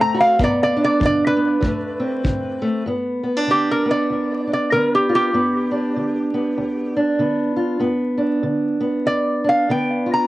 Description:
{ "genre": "acoustic country blues, solo or duo", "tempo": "97 BPM", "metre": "4/4", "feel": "swing 60% on 8ths", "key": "G mixolydian", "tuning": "A4 = 440 Hz", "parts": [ { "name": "lap resonator guitar", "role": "melody", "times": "0.0-10.3 s", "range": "G4 to Bb5", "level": "-19 LUFS", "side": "equal", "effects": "analog delay" }, { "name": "fingerpicked steel-string acoustic guitar", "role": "accompaniment", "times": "0.0-10.3 s", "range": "D2 to F#4", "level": "-19 LUFS", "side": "right 1 dB", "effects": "cassette tape" }, { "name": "kick drum", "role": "drums", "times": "0.4-2.4 s", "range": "none", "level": "-24 LUFS", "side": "equal", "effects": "cassette tape" } ], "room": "light reverb", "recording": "home recording on cassette, vinyl crackle, nothing above 10.9 kHz", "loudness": "-17 LUFS", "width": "side -17 dB against mid", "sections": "0.0-2.9 A section; 2.9-10.3 B section", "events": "resonator guitar played with a steel bar solo 0.0-2.9", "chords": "0.4 G; 1.6 D5; 2.9 G" }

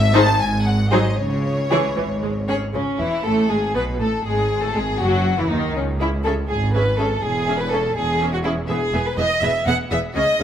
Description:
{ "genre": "quick classical-period movement for string orchestra", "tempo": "80 BPM (dotted quarters)", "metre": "6/8", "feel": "rubato", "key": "C# minor", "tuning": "A4 = 442 Hz", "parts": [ { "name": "rich symphonic violin section", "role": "melody", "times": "0.0-10.4 s", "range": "C#4 to A5", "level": "-27 LUFS", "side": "left 3 dB", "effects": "none" }, { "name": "rich symphonic cello section", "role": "bass", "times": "0.0-10.4 s", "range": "C#2 to C#3", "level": "-25 LUFS", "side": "right 1 dB", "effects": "none" }, { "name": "rich symphonic double bass section", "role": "bass", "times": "0.0-10.4 s", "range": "E1 to D#2", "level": "-25 LUFS", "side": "right 1 dB", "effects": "none" }, { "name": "rich chamber violin section", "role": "second line", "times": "0.1-10.4 s", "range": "C#4 to F#5", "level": "-22 LUFS", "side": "left 1 dB", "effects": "none" }, { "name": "bright symphonic viola section", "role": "accompaniment", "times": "0.1-10.4 s", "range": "C#3 to G#4", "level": "-24 LUFS", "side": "equal", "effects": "none" } ], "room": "moderate recital hall reverb, RT60 1.6 s", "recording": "none", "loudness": "-18 LUFS", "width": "side -9 dB against mid", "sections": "0.0-2.7 A section; 2.7-10.4 A section", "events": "none", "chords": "0.4 G#7(no3); 1.2 C#m; 4.3 G#5; 5.8 C#m; 7.2 C#m/E; 8.7 E" }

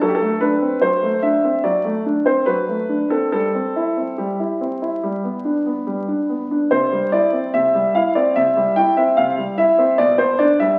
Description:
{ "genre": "classical-period piano sonatina", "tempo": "73 BPM", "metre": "4/4", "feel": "rubato", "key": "C major", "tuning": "A4 = 441 Hz", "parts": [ { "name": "clear baby grand piano", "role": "solo", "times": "0.0-10.8 s", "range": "B2 to G5", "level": "-18 LUFS", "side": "equal", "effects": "none" } ], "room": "wet recital hall reverb, RT60 1.5 s", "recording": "very old 78 rpm record, vinyl crackle", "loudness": "-18 LUFS", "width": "mono", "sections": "0.0-6.7 A section; 6.7-10.8 A section", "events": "none", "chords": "0.0 D7/F#; 3.3 C/G; 5.0 G; 6.7 C; 10.0 G/B" }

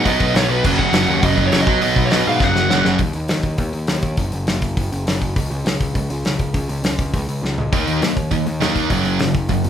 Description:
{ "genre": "punk rock", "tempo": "203 BPM", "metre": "4/4", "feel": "straight", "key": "F# major", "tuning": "A4 = 440 Hz", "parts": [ { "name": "lead guitar through a small cranked amp", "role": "melody", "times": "0.0-2.9 s", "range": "B4 to F#5", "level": "-20 LUFS", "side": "right 2 dB", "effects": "overdrive" }, { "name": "biting overdriven guitar", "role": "riff", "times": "0.0-3.0, 7.7-9.6 s", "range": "F#2 to D#4", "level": "-22 LUFS", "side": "left 7 dB", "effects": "none" }, { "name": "sludgy distorted guitar", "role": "riff", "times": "0.0-3.0, 7.7-9.6 s", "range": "F#2 to D#4", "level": "-20 LUFS", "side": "right 7 dB", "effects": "overdrive" }, { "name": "fuzz picked electric bass", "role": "bass", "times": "0.1-9.7 s", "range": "F#1 to G#2", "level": "-22 LUFS", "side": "equal", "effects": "overdrive" }, { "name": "loose indie drum kit", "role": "drums", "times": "0.1-9.7 s", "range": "crash cymbal, hi-hat, kick drum, snare drum, splash cymbal, toms", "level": "-20 LUFS", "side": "left 1 dB", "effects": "none" } ], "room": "light reverb", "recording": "band playing live in one room", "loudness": "-16 LUFS", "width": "side -9 dB against mid", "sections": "0.0-3.0 A section; 3.0-9.7 B section", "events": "drum fill 2.4-3.0, 7.4", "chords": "0.0 B; 0.6 F#5; 1.7 B5; 2.4 F#5; 3.0 N.C.; 7.7 D#5; 8.9 F#5" }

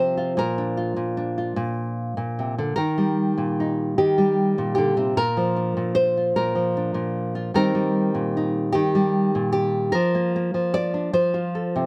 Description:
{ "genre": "folk, solo fingerstyle acoustic guitar", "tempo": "50 BPM (dotted quarters)", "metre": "6/8", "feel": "straight", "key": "unclear", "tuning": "A4 = 440 Hz", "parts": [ { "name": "nylon-string guitar", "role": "solo", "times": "0.0-11.9 s", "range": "Bb2 to D5", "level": "-23 LUFS", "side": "equal", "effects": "none" } ], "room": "light reverb", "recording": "close, detailed microphones", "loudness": "-23 LUFS", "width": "mono", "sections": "0.0-2.8 A section; 2.8-11.9 B section", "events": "none", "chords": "0.4 Bb; 2.8 Eb; 5.2 Bb; 7.6 Eb6; 9.9 Bb/F; 11.1 F" }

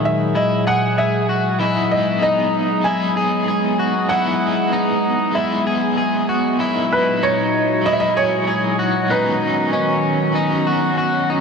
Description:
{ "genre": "dream pop", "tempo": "96 BPM", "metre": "4/4", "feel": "straight", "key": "unclear", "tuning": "A4 = 440 Hz", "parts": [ { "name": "felt-muted upright piano", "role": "melody", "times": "0.0-10.9 s", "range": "B4 to G#5", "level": "-22 LUFS", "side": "right 2 dB", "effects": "shimmer reverb, tape echo" }, { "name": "warbly tape-like pad", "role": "sustained chords", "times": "0.0-11.4 s", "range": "A#2 to D#5", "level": "-21 LUFS", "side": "equal", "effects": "chorus, built-in reverb" }, { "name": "electric guitar at the edge of break-up", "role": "arpeggios", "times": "0.0-11.4 s", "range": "D#3 to G#4", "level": "-21 LUFS", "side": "left 3 dB", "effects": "lush chorus, shimmer reverb, tape echo" }, { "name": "overdriven tine electric piano", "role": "texture", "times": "0.0-11.4 s", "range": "C#5 to D#6", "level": "-31 LUFS", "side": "right 2 dB", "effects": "fast tremolo, wide subtle chorus, shimmer reverb, tape echo" }, { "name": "overdriven electric guitar", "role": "accompaniment", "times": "1.6-11.4 s", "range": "B2 to A#4", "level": "-25 LUFS", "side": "right 2 dB", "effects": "tremolo, lush chorus, shimmer reverb" } ], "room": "wet huge ambient reverb, RT60 4.8 s", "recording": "dark, warm production", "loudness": "-16 LUFS", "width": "side -5 dB against mid", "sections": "0.0-11.4 A section", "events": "none", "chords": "0.0 F#13; 1.6 Emaj7; 6.6 F#13; 9.1 Badd9" }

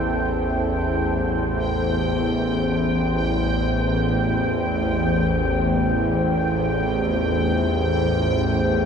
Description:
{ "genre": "dark ambient drone", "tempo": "free time", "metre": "none", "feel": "none", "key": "A minor", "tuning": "A4 = 437 Hz", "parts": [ { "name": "deep dark ambient pad", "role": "sustained chords", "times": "0.0-8.9 s", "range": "A3 to G5", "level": "-25 LUFS", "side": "right 1 dB", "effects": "chorus, built-in reverb" }, { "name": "bowed-like drone", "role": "drone", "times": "0.0-8.9 s", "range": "A1 to E2", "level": "-21 LUFS", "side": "equal", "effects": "built-in reverb" }, { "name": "bubbling stepped-filter texture", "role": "texture", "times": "0.0-8.9 s", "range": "G5", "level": "-28 LUFS", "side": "equal", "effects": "chorus, built-in reverb" } ], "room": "wet huge ambient reverb, RT60 8.1 s", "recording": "none", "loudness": "-19 LUFS", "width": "side -6 dB against mid", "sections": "0.0-8.9 A section", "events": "none", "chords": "0.0 Am7; 5.3 Fadd9/A" }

